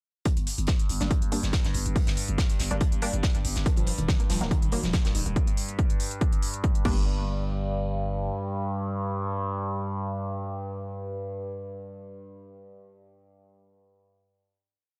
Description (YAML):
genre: driving peak-time techno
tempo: 141 BPM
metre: 4/4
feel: straight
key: G minor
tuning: A4 = 440 Hz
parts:
  - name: overtone-sweeping drone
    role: drone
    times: 0.5-11.3 s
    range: G2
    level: -35 LUFS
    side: equal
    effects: chorus, built-in reverb, sidechain pumping
  - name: electronic kick drum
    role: drums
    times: 0.3-6.9 s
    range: none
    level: -27 LUFS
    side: equal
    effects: none
  - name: techno drum kit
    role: drums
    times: 0.3-6.9 s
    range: crash cymbal, hi-hat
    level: -38 LUFS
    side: equal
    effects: sidechain pumping on hats, sidechain pumping on cymbals
  - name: tight metal drum kit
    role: drums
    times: 0.3-5.3 s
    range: hi-hat, snare drum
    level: -39 LUFS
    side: equal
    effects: sidechain pumping on hats, high-pass filter on hats, high-pass filter on snare, high-pass filter on room
  - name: growling 808-style bass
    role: bass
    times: 0.4-8.3 s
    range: Eb1 to G1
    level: -33 LUFS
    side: equal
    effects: tube saturation, sidechain pumping, low-pass filter
  - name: filtered dub chord stab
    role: stabs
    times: 1.0-11.4 s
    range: Eb3 to D4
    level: -36 LUFS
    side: equal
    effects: phaser, analog chorus, sidechain pumping, analog delay
  - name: tight sequenced synth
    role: riff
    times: 3.7-7.2 s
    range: Eb3 to Bb3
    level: -37 LUFS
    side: equal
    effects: chorus, phaser, sidechain pumping, analog delay
room: digital ambience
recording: dry, gritty hardware recording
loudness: -27 LUFS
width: mono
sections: 0.3-7.1 groove; 7.1-10.5 final hit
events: none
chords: 0.3 Gm; 3.7 Eb5; 6.9 Gm